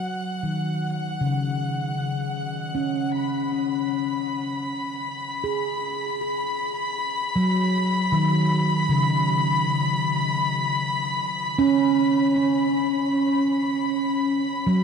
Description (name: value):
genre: ambient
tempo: 78 BPM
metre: 4/4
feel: straight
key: unclear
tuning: A4 = 440 Hz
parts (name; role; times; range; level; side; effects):
- handpan; arpeggios; 0.0-14.8 s; C#3 to G#4; -23 LUFS; equal; ping-pong delay, shimmer reverb
- clear studio violin section; texture; 0.0-14.8 s; F#5 to B6; -27 LUFS; left 2 dB; shimmer reverb
room: wet huge ambient reverb, RT60 7.9 s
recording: none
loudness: -21 LUFS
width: side -6 dB against mid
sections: 0.0-14.8 A section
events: fade-in on handpan 0.0-14.8; fade-in on violin section 0.0-14.8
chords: 0.0 C#sus2; 3.1 N.C.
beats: | 0.05 0.82 1.59 2.36 | 3.13 3.90 4.67 5.44 | 6.21 6.97 7.74 8.51 | 9.28 10.05 10.82 11.59 | 12.36 13.13 13.90 14.67